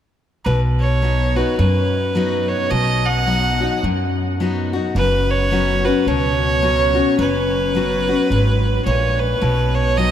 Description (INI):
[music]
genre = honky-tonk and classic country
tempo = 107 BPM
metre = 4/4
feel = swing 60% on 8ths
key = B major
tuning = A4 = 440 Hz
[part]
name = clear fiddle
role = melody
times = 0.4-10.1 s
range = B4 to F#5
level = -20 LUFS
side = right 2 dB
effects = none
[part]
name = picked steel-string acoustic guitar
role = accompaniment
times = 0.5-10.1 s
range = F#2 to F#4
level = -20 LUFS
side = left 4 dB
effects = none
[part]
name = upright bass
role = bass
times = 0.5-10.1 s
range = F#1 to F#2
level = -20 LUFS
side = right 1 dB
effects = none
[sound]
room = wet cathedral reverb, RT60 5.9 s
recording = in a vast, echoing space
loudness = -16 LUFS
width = side -10 dB against mid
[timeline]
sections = 0.5-9.4 A section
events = none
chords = 0.5 B; 4.9 F#sus4; 9.4 B